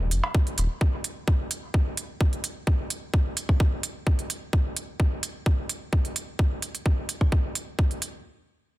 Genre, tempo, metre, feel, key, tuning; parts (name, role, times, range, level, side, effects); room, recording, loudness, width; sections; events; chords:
minimal techno; 129 BPM; 4/4; straight; A4 = 440 Hz
round analog bass; bass; 0.0-0.7 s; Eb1 to F1; -25 LUFS; equal; tube saturation, sidechain pumping
electronic hi-hat; drums; 0.1-8.1 s; -30 LUFS; right 4 dB
electronic kick drum; drums; 0.3-7.9 s; -24 LUFS; equal
little or no reverb; dense, heavily limited modern master; -24 LUFS; side -17 dB against mid
0.0-8.3 A section